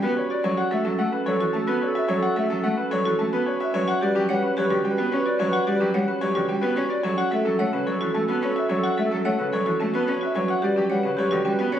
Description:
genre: classical, minimalist pattern music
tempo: 109 BPM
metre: 3/4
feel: straight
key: unclear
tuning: A4 = 438 Hz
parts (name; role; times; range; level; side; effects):
- bright grand piano; melody; 0.0-11.8 s; G4 to A5; -25 LUFS; left 3 dB; none
- mellow clarinet; second line; 0.0-11.7 s; A4 to B4; -31 LUFS; right 1 dB; none
- rich cello; accompaniment; 0.0-11.8 s; C#3 to C#4; -27 LUFS; equal; none
- marimba with hard mallets; arpeggios; 0.0-11.8 s; C#4 to C#5; -26 LUFS; right 4 dB; none
room: moderate large studio reverb, RT60 1.1 s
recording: recorded on a phone in the room, studio reverb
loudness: -21 LUFS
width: side -10 dB against mid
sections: 0.0-11.8 A section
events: none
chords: 0.4 F#m7; 3.7 Gmaj7; 7.0 F#m7; 10.3 Gmaj7

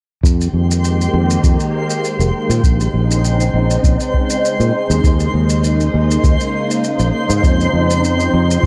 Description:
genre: sunset chillout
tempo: 100 BPM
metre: 4/4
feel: straight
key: F minor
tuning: A4 = 435 Hz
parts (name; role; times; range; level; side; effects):
- soft string machine; sustained chords; 0.5-8.7 s; Db3 to G4; -21 LUFS; equal; phaser, ensemble chorus
- fretless electric bass; bass; 0.2-8.7 s; F1 to Bb2; -17 LUFS; equal; none
- electronic kick drum; drums; 0.2-8.7 s; none; -16 LUFS; equal; overdrive
- twinkling granular texture; texture; 0.2-8.7 s; C5 to C6; -26 LUFS; equal; built-in reverb
- shaker; drums; 0.3-8.6 s; none; -29 LUFS; equal; none
room: light reverb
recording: worn, warbling old tape, cassette tape, warbly pitch drift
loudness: -15 LUFS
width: mono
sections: 0.2-8.7 A section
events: none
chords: 0.2 Fm11; 2.6 Bbm11; 7.4 Dbmaj9/F

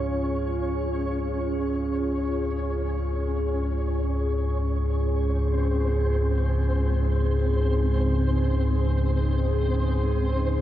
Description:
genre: dark ambient drone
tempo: free time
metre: none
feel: none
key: C# major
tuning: A4 = 440 Hz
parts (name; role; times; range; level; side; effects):
- deep dark ambient pad; sustained chords; 0.0-10.6 s; C#3 to C#5; -28 LUFS; equal; chorus, built-in reverb, shimmer reverb
- deep rumbling drone; drone; 0.0-10.6 s; C#2 to G#2; -24 LUFS; equal; built-in reverb
- flickering grainy texture; texture; 0.0-10.6 s; B#3 to C#5; -34 LUFS; equal; built-in reverb, shimmer reverb
room: wet huge ambient reverb, RT60 7.0 s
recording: dark, warm production, nothing above 10.7 kHz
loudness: -22 LUFS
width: side -13 dB against mid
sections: 0.0-10.6 A section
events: filter sweep on synth drone 0.0-10.6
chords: 0.0 C#; 5.1 G#/C#

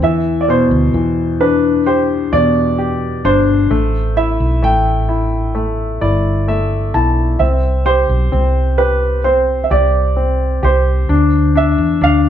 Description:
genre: pop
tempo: 65 BPM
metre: 4/4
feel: straight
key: C major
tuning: A4 = 438 Hz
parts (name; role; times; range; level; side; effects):
- warm baby grand piano; melody; 0.0-12.3 s; B4 to G5; -17 LUFS; right 4 dB; none
- clear concert grand piano; accompaniment; 0.0-12.3 s; B2 to A5; -16 LUFS; left 4 dB; none
- woody fretless electric bass; bass; 0.0-12.3 s; G1 to E2; -16 LUFS; right 1 dB; none
room: moderate large studio reverb, RT60 0.8 s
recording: band playing live in one room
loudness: -12 LUFS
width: side -10 dB against mid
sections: 0.0-12.3 A section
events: grand piano fill 5.6-7.4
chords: 0.0 Em7; 3.7 A5; 7.4 Csus2; 11.1 Bdim (rootless)

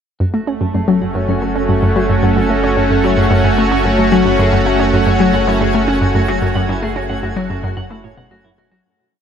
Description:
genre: ambient, sequencer-driven space music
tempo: 111 BPM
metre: 4/4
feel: straight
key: F# minor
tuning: A4 = 440 Hz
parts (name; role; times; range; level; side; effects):
- lush unison pad; sustained chords; 0.2-8.9 s; A3 to F#4; -16 LUFS; right 1 dB; chorus, shimmer reverb
- clean electric guitar; arpeggios; 0.2-8.8 s; E4 to F#5; -28 LUFS; right 1 dB; auto-pan, analog delay, shimmer reverb
- analog pluck; riff; 0.2-8.8 s; F#2 to C#4; -16 LUFS; equal; chorus, analog delay
- warm sub bass; bass; 0.2-8.8 s; F#1; -23 LUFS; equal; none
- twinkling granular texture; texture; 1.4-8.9 s; G#5; -30 LUFS; right 1 dB; built-in reverb, shimmer reverb
room: wet huge ambient reverb, RT60 8.6 s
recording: dark, warm production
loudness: -12 LUFS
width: side -8 dB against mid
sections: 0.2-8.9 A section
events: fade-in on clean electric guitar 0.2-8.9; fade-in on synth texture 0.2-8.9; fade-out 6.0-8.9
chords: 0.2 F#m

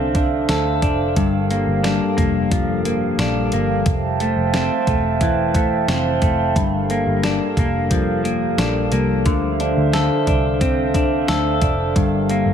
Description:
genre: dream pop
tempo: 89 BPM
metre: 4/4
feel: straight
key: G dorian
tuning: A4 = 440 Hz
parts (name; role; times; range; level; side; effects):
- glass harmonica; sustained chords; 0.0-12.5 s; G3 to A5; -22 LUFS; right 3 dB; none
- semi-hollow electric guitar; arpeggios; 0.0-12.5 s; G2 to A4; -21 LUFS; left 3 dB; lush chorus, ping-pong delay
- vintage muted picked electric bass; bass; 0.0-12.5 s; E1 to D2; -23 LUFS; equal; none
- crisp 8-bit digital drum machine; drums; 0.1-12.4 s; hi-hat, kick drum, snare drum; -22 LUFS; equal; none
room: light reverb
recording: none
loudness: -16 LUFS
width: side -8 dB against mid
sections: 0.0-12.5 A section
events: none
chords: 0.0 Dm7; 1.2 Gm7; 3.9 Fmaj7; 6.6 Gm7; 9.3 Dm7; 12.0 Gm7

